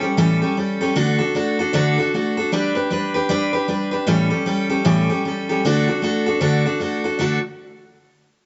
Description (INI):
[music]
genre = rock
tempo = 154 BPM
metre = 4/4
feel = swing 61% on 8ths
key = D major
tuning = A4 = 440 Hz
[part]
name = picked steel-string acoustic guitar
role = solo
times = 0.0-7.4 s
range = A2 to B4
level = -20 LUFS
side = equal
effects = none
[sound]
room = moderate echo chamber reverb, RT60 1.7 s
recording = nothing above 7.8 kHz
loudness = -20 LUFS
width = mono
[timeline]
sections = 0.0-7.2 A section; 7.2-8.5 B section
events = none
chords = 0.0 A7; 1.0 D; 2.5 G; 4.1 A7; 5.6 D